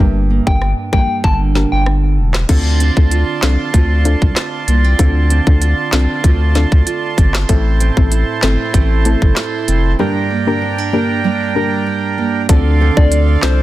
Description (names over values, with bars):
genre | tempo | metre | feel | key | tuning
dancehall | 96 BPM | 4/4 | straight | D minor | A4 = 440 Hz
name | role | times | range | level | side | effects
soft round pluck | accompaniment | 0.0-13.6 s | A3 to Bb4 | -21 LUFS | left 4 dB | chorus
nylon-string guitar | arpeggios | 0.0-13.6 s | G2 to A4 | -20 LUFS | right 6 dB | none
saturated sub bass | bass | 0.0-13.6 s | E1 to D2 | -14 LUFS | equal | none
soft struck synth lead | melody | 0.5-1.8, 13.0-13.6 s | C5 to A5 | -21 LUFS | left 3 dB | chorus, tape echo
island pop drum kit | drums | 0.5-13.6 s | crash cymbal, handclaps, hi-hat, kick drum, rim click, snare drum | -14 LUFS | equal | none
accordion | sustained chords | 2.5-13.6 s | D4 to C6 | -21 LUFS | right 4 dB | sidechain pumping
room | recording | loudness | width
little or no reverb | dense, heavily limited modern master | -12 LUFS | side -15 dB against mid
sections
0.0-2.5 A section; 2.5-12.5 B section; 12.5-13.6 C section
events
break 10.0-12.5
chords
0.0 Gm; 2.5 Dm7; 7.5 Am; 10.0 Gm; 12.5 Dm7